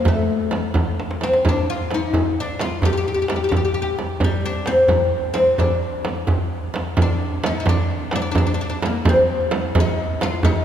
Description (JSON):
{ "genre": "Persian modal ensemble", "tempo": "87 BPM (dotted quarters)", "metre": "6/8", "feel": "straight", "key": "D dastgah shur", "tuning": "A4 = 440 Hz", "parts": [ { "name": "oud", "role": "melody", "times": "0.0-10.6 s", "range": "G3 to G4", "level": "-21 LUFS", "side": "left 2 dB", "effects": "none" }, { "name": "frame drum", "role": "percussion", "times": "0.1-10.5 s", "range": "none", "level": "-24 LUFS", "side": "right 3 dB", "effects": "none" }, { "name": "tombak", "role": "percussion", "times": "0.1-10.5 s", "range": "none", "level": "-22 LUFS", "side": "right 1 dB", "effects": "none" } ], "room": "wet church reverb, RT60 3.3 s", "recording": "recorded in a church or concert hall", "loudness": "-18 LUFS", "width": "side -9 dB against mid", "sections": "0.0-7.0 A section; 7.0-10.6 B section", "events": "drum fill 1.0-1.4", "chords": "none" }